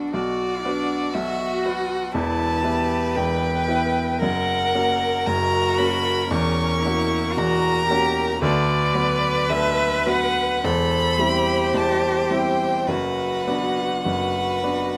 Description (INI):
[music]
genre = classical, slow romantic movement for piano quartet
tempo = 50-61 BPM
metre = 4/4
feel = rubato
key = B minor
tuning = A4 = 440 Hz
[part]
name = clear cello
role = second line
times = 0.0-15.0 s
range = C#4 to B4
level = -29 LUFS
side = equal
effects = none
[part]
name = clear violin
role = second line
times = 0.0-15.0 s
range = F#4 to C5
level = -30 LUFS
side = equal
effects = none
[part]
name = warm baby grand piano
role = accompaniment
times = 0.0-15.0 s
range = E1 to D5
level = -26 LUFS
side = equal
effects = none
[part]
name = rich violin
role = melody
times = 0.1-15.0 s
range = D5 to C#6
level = -26 LUFS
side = equal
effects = none
[sound]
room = light reverb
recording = none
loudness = -22 LUFS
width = mono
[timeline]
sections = 0.0-15.0 A section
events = none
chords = 0.0 Bm; 2.1 Em; 4.2 F#; 6.3 F#7/E; 8.4 Bm/D; 10.7 C/E; 12.9 Bm/F#